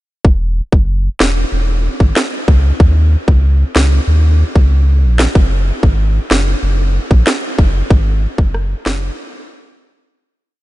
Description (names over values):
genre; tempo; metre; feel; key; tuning
dancehall; 94 BPM; 4/4; straight; unclear; A4 = 436 Hz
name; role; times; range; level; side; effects
warm sub bass; bass; 0.2-9.1 s; E1 to D#2; -12 LUFS; equal; none
island pop drum kit; drums; 0.2-9.0 s; kick drum, rim click, snare drum; -14 LUFS; equal; none
room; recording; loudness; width
little or no reverb; nothing above 11.0 kHz; -11 LUFS; side -17 dB against mid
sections
0.2-10.5 verse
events
fade-out 7.9-10.5; break 9.2-10.5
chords
none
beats
| 0.24 0.88 1.52 2.16 | 2.80 3.44 4.08 4.71 | 5.35 5.99 6.63 7.27 | 7.90 8.54